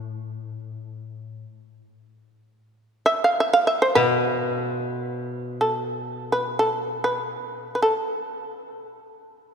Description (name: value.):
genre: japanese traditional, Japanese chamber music.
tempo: free time.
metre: none.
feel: none.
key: unclear.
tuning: A4 = 440 Hz.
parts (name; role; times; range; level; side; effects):
shamisen; melody; 0.0-9.5 s; A4 to A5; -22 LUFS; right 1 dB; none.
koto; accompaniment; 0.0-7.3 s; A2 to B2; -28 LUFS; left 2 dB; none.
room: wet church reverb, RT60 3.7 s.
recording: minimal, uncompressed stereo recording.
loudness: -21 LUFS.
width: side -6 dB against mid.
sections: 0.0-9.5 A section.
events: slowing down 3.2-9.5.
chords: none.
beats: free time.